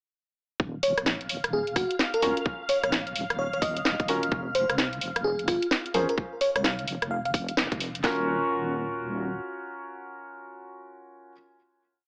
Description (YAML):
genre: UK garage, two-step garage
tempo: 129 BPM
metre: 4/4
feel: swing 63% on 16ths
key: Eb dorian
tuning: A4 = 440 Hz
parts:
  - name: soft string machine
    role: sustained chords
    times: 1.3-8.1 s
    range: F5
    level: -39 LUFS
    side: equal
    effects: ensemble chorus, sidechain pumping
  - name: deep soft wobble bass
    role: bass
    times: 0.6-9.4 s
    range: Eb1 to F2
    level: -38 LUFS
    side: equal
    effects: chorus, sidechain pumping
  - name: garage drum kit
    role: drums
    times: 0.6-8.2 s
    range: handclaps, kick drum, snare drum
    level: -30 LUFS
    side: equal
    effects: small room ambience
  - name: bell-like FM electric piano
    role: melody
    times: 0.8-7.3 s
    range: F4 to F5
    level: -31 LUFS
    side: equal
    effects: chorus, tremolo, tape echo
  - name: garage drum kit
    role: drums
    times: 0.8-8.0 s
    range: hi-hat, rim click, snare drum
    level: -30 LUFS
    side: equal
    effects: small room ambience
  - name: dark concert grand piano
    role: stabs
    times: 2.2-11.3 s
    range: Db4 to C5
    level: -32 LUFS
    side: equal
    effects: tape echo
room: moderate spring reverb, RT60 1.4 s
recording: echo-heavy mix, AM radio sound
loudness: -27 LUFS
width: mono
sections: 0.6-8.0 drop; 8.0-11.8 final chord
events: drop 0.6-8.0; band accent 7.6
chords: 0.6 Eb5; 4.3 F5; 8.0 Ebm7